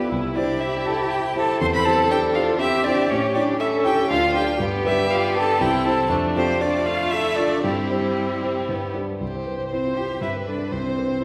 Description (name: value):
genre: quick classical-period movement for piano quintet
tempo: 120 BPM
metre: 3/4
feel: straight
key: C major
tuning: A4 = 440 Hz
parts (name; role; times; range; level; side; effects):
- rich violin; melody; 0.0-11.2 s; G4 to C6; -27 LUFS; equal; none
- rich cello; second line; 0.0-11.2 s; G3 to C5; -30 LUFS; equal; none
- rich violin; second line; 0.0-11.2 s; A3 to C5; -30 LUFS; equal; none
- clear viola; accompaniment; 0.0-11.2 s; D4 to C5; -29 LUFS; equal; none
- dark grand piano; accompaniment; 0.0-11.2 s; B1 to D5; -28 LUFS; equal; none
room: wet scoring stage reverb, RT60 1.9 s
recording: recorded in a church or concert hall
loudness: -22 LUFS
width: mono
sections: 0.0-9.2 A section; 9.2-11.2 B section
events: none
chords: 0.1 C; 1.6 C/E; 3.1 A7; 4.1 Dm; 4.6 G; 5.6 C; 6.1 Dm/F; 7.6 C/G; 8.7 G; 9.2 C; 10.2 G; 10.7 N.C.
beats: | 0.11 0.61 1.11 | 1.60 2.10 2.60 | 3.10 3.60 4.10 | 4.60 5.10 5.60 | 6.11 6.61 7.12 | 7.64 8.17 8.69 | 9.21 9.72 10.22 | 10.72 11.22